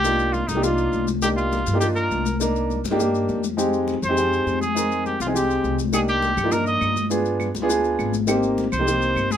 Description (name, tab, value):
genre	Afro-Cuban jazz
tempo	204 BPM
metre	4/4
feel	straight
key	C minor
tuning	A4 = 440 Hz
part	clear trumpet	melody	0.0-9.4 s	Eb4 to Eb5	-23 LUFS	right 1 dB	none
part	warm grand piano	accompaniment	0.0-9.3 s	Ab3 to Bb4	-22 LUFS	equal	none
part	upright bass	bass	0.0-9.4 s	G1 to G2	-28 LUFS	right 1 dB	none
part	maracas	percussion	0.0-9.4 s	none	-34 LUFS	left 8 dB	none
part	congas	percussion	0.1-9.4 s	none	-28 LUFS	left 5 dB	none
part	claves	percussion	5.9-9.3 s	none	-34 LUFS	right 4 dB	none
room	light reverb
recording	minimal, uncompressed stereo recording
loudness	-19 LUFS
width	side -9 dB against mid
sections	0.0-9.4 A section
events	none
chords	0.0 Cm7; 3.6 Fm7; 5.9 Cm7; 7.1 G7b9; 8.3 Abmaj7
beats	| 0.05 0.35 0.64 0.94 | 1.23 1.52 1.82 2.11 | 2.41 2.70 3.00 3.29 | 3.58 3.88 4.17 4.46 | 4.76 5.05 5.35 5.64 | 5.93 6.23 6.52 6.82 | 7.11 7.40 7.70 7.99 | 8.28 8.58 8.87 9.16